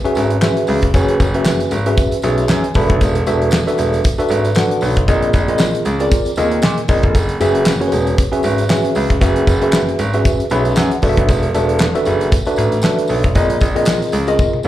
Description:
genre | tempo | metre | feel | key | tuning
early-eighties boogie funk | 116 BPM | 4/4 | swing 56% on 16ths | unclear | A4 = 440 Hz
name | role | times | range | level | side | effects
tine electric piano | accompaniment | 0.0-14.7 s | B#3 to B5 | -17 LUFS | equal | overdrive, fast stereo tremolo, slapback echo
damped 70s drum kit | drums | 0.1-14.7 s | handclaps, hi-hat, kick drum, snare drum, toms | -17 LUFS | equal | none
tambourine | percussion | 0.1-14.7 s | none | -34 LUFS | equal | none
clear concert grand piano | bass | 0.2-14.7 s | E1 to A#2 | -18 LUFS | equal | none
room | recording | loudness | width
light reverb, studio reverb | live gig heard through the venue's PA, club reverb | -13 LUFS | side -13 dB against mid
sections
0.0-14.7 A section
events
tine electric piano fill 2.0-3.0, 10.3-11.3, 14.4; drum fill 14.4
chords
0.0 F#9sus4; 2.8 E9sus4; 5.1 A#9sus4; 7.1 F#9sus4; 11.0 E9sus4; 13.4 A#9sus4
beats
0.42 | 0.94 1.46 1.98 2.49 | 3.01 3.53 4.04 4.56 | 5.08 5.60 6.11 6.63 | 7.15 7.67 8.18 8.70 | 9.22 9.73 10.25 10.77 | 11.29 11.80 12.32 12.84 | 13.35 13.87 14.39

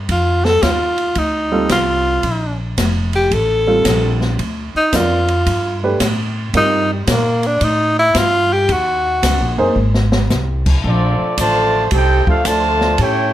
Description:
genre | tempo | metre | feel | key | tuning
jazz, big band swing | 112 BPM | 4/4 | swing 67% on 8ths | Bb major | A4 = 440 Hz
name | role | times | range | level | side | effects
upright bass | bass | 0.0-13.3 s | F1 to Bb2 | -18 LUFS | equal | none
clear tenor saxophone | melody | 0.1-9.6 s | G3 to A4 | -15 LUFS | equal | none
open jazz drum kit | drums | 0.1-13.2 s | crash cymbal, hi-hat, kick drum, ride cymbal, snare drum | -22 LUFS | equal | none
warm baby grand piano | accompaniment | 1.5-9.7 s | G3 to D5 | -19 LUFS | right 2 dB | none
dark trombone section | second line | 10.8-13.3 s | D3 to G4 | -20 LUFS | equal | none
mellow trumpet section | melody | 10.9-13.3 s | C4 to A5 | -16 LUFS | right 2 dB | none
room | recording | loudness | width
light reverb | none | -13 LUFS | side -13 dB against mid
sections
0.0-10.8 A section; 10.8-13.3 B section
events
tenor saxophone solo 0.0-10.8; drum fill 9.8-10.3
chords
0.1 F7; 2.2 Bb5; 4.4 Dm7; 5.5 G; 6.5 C5; 8.7 Ebm7; 9.8 Ab; 10.8 Bbmaj9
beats
| 0.09 0.63 1.17 1.71 | 2.24 2.78 3.32 3.85 | 4.39 4.93 5.47 6.00 | 6.54 7.08 7.62 8.15 | 8.69 9.23 9.76 10.30 | 10.84 11.37 11.91 12.45 | 12.98

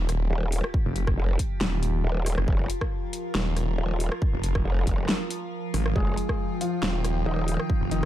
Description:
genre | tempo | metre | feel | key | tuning
heavy wobble dubstep | 138 BPM | 4/4 | swing 54% on 16ths, half-time | F minor | A4 = 443 Hz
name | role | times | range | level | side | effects
evolving wavetable pad | sustained chords | 0.0-8.1 s | F3 to G5 | -33 LUFS | equal | chorus, built-in reverb, phaser, sidechain pumping
snarling distorted saw bass | bass | 0.0-8.1 s | Eb1 to Ab1 | -26 LUFS | equal | overdrive
sub drop | sound effects | 0.7 s | none | barely audible | none | none
dubstep drum kit | drums | 0.1-8.1 s | hi-hat, rim click, snare drum | -30 LUFS | equal | none
growl bass | bass | 0.3-7.6 s | Eb1 to F1 | -26 LUFS | equal | chorus, overdrive
electronic kick drum | drums | 0.7-8.1 s | none | -26 LUFS | equal | none
dark baby grand piano | melody | 6.0-8.1 s | Eb3 to Ab4 | -31 LUFS | left 1 dB | ping-pong delay
room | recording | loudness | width
little or no reverb | dark, warm production | -24 LUFS | side -13 dB against mid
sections
0.0-8.1 A section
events
impact 0.0-0.7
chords
0.0 Fsus2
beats
0.30 | 0.74 1.18 1.61 2.04 | 2.48 2.91 3.35 3.78 | 4.22 4.65 5.09 5.52 | 5.96 6.39 6.83 7.26 | 7.70

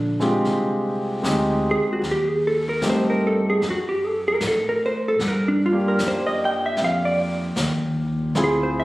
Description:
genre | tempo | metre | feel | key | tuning
jazz ballad | 76 BPM | 4/4 | swing 69% on 8ths | unclear | A4 = 439 Hz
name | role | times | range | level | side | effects
vintage hollow-body jazz guitar | melody | 0.0-8.8 s | D3 to G5 | -22 LUFS | right 1 dB | none
upright bass | bass | 0.0-8.8 s | Bb1 to A2 | -26 LUFS | equal | none
warm concert grand piano | accompaniment | 0.2-8.8 s | Ab3 to Ab4 | -24 LUFS | equal | none
vintage brush drum kit | drums | 0.2-8.8 s | brushed snare drum, hi-hat, snare drum | -31 LUFS | left 1 dB | none
room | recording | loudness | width
light reverb | recorded on a phone in the room, studio reverb, compression | -19 LUFS | side -18 dB against mid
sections
0.0-8.8 A section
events
hollow-body jazz guitar solo 0.0-8.8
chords
0.0 Fm9; 2.0 Am7b5; 3.6 F#m; 5.2 Gm7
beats
0.45 1.24 | 2.03 2.82 3.61 4.40 | 5.19 5.98 6.77 7.56 | 8.35

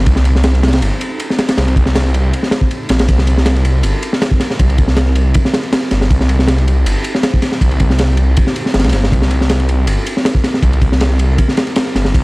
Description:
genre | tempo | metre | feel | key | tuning
drum and bass, jungle | 159 BPM | 4/4 | straight | C minor | A4 = 440 Hz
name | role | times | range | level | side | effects
warbly tape-like pad | sustained chords | 0.0-12.2 s | C4 to C5 | -27 LUFS | equal | chorus, built-in reverb
detuned saw bass | bass | 0.0-12.2 s | G1 to C2 | -13 LUFS | equal | none
crunchy breakbeat drum kit | drums | 0.1-12.2 s | kick drum, ride cymbal, snare drum | -14 LUFS | equal | none
room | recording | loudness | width
studio reverb | dry, gritty hardware recording, transformer saturation, vinyl crackle | -11 LUFS | side -24 dB against mid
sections
0.0-12.2 A section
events
none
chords
0.0 Cm7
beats
| 0.07 0.44 0.82 1.20 | 1.58 1.95 2.33 2.71 | 3.08 3.46 3.84 4.22 | 4.59 4.97 5.35 5.73 | 6.10 6.48 6.86 7.24 | 7.61 7.99 8.37 8.75 | 9.12 9.50 9.88 10.26 | 10.63 11.01 11.39 11.77 | 12.14

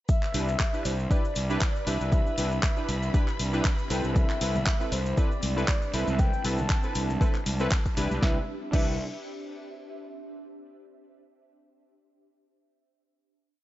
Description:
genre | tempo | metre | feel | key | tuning
deep house | 118 BPM | 4/4 | swing 55% on 16ths | C major | A4 = 440 Hz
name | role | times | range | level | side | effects
breathy flute-like synth lead | melody | 0.1-9.0 s | C5 to A5 | -35 LUFS | left 1 dB | wide subtle chorus, tape echo
electronic kick drum | drums | 0.1-8.8 s | none | -25 LUFS | equal | overdrive
cabasa | percussion | 0.1-8.2 s | none | -45 LUFS | left 1 dB | none
ethereal airy pad | texture | 1.8-10.2 s | C4 to E5 | -41 LUFS | right 1 dB | ensemble chorus, built-in reverb, phaser, sidechain pumping
warm symphonic violin section | texture | 0.1-8.2 s | B4 to B5 | -42 LUFS | right 1 dB | none
deep house drum kit | drums | 0.2-8.8 s | crash cymbal, handclaps, hi-hat, snare drum | -34 LUFS | equal | overdrive
warm analog keys | stabs | 0.3-8.9 s | C4 to B4 | -33 LUFS | equal | chorus, tape echo
fuzz fingered electric bass | bass | 0.3-9.0 s | C2 | -30 LUFS | equal | overdrive, sidechain pumping
congas | percussion | 4.5-8.2 s | none | -38 LUFS | right 1 dB | none
room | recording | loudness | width
little or no reverb | nothing above 7.7 kHz | -24 LUFS | side -15 dB against mid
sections
0.1-8.2 drop; 8.2-10.3 final chord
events
drop 0.1-8.2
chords
0.1 Cmaj9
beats
| 0.09 0.60 1.11 1.61 | 2.12 2.63 3.14 3.65 | 4.16 4.67 5.17 5.68 | 6.19 6.70 7.21 7.72 | 8.23 8.73 9.24 9.75

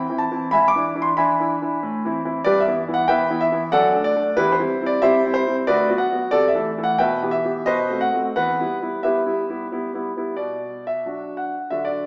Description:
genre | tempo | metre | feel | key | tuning
classical-period piano sonatina | 92 BPM | 3/4 | rubato | E minor | A4 = 440 Hz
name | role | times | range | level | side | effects
clear grand piano | solo | 0.0-12.1 s | D2 to D6 | -21 LUFS | equal | none
room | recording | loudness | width
wet recital hall reverb, RT60 1.5 s | recorded in a church or concert hall, small speaker sound | -21 LUFS | mono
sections
0.0-10.4 A section; 10.4-12.1 B section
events
none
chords
0.0 Am; 0.5 E7/G#; 1.8 Am; 2.4 Em/G; 3.7 D/F#; 4.4 C/E; 5.7 Bm/D; 6.3 Am/C; 7.0 Em/B; 7.7 B7b9; 8.4 Em; 10.4 Bm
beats
| 0.52 1.16 1.80 | 2.45 3.09 3.73 | 4.38 5.03 5.68 | 6.34 7.00 7.67 | 8.36 9.04 9.72 | 10.39 11.06 11.72

